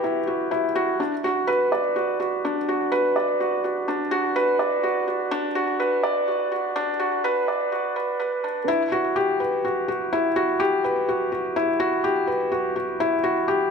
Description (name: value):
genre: electronica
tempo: 125 BPM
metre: 4/4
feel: straight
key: unclear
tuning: A4 = 440 Hz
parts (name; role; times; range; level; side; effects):
- felt-muted upright piano; solo; 0.0-13.7 s; D4 to D5; -21 LUFS; equal; none
room: wet echo chamber reverb, RT60 2.6 s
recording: high-pass filter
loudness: -21 LUFS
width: side -5 dB against mid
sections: 0.0-8.7 A section; 8.7-13.7 B section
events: build-up 0.0-8.7; drop 8.7-13.7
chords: none